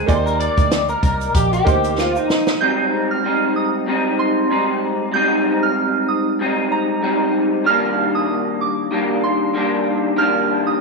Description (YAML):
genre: indie pop, bedroom pop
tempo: 95 BPM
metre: 4/4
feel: swing 55% on 16ths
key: unclear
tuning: A4 = 440 Hz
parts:
  - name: bright upright piano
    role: accompaniment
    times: 0.0-2.6 s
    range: Ab3 to D5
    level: -23 LUFS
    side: right 7 dB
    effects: cassette tape
  - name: electric guitar through a small old amp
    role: accompaniment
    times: 0.0-10.8 s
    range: Ab2 to D5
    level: -18 LUFS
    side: left 1 dB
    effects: ensemble chorus, vibrato effect
  - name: vintage muted fingered electric bass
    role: bass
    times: 0.0-2.2 s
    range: Bb1 to Eb2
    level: -23 LUFS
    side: right 2 dB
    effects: none
  - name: compact cocktail drum kit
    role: drums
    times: 0.1-2.6 s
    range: hi-hat, kick drum, snare drum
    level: -19 LUFS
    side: right 1 dB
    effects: none
  - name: egg shaker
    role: percussion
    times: 0.1-2.6 s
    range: none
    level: -44 LUFS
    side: left 12 dB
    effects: none
  - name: soft synth bell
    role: second line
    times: 2.6-10.8 s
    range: Bb5 to G6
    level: -21 LUFS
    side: right 7 dB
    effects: lush chorus, analog delay
room: light reverb, studio reverb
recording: none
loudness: -16 LUFS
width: side -2 dB against mid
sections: 0.0-2.6 A section; 2.6-10.8 B section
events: clean electric guitar solo 0.0-2.6; drum fill 2.0-2.6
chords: 0.1 Ebmaj7; 2.6 Abmaj7; 7.7 Ebmaj7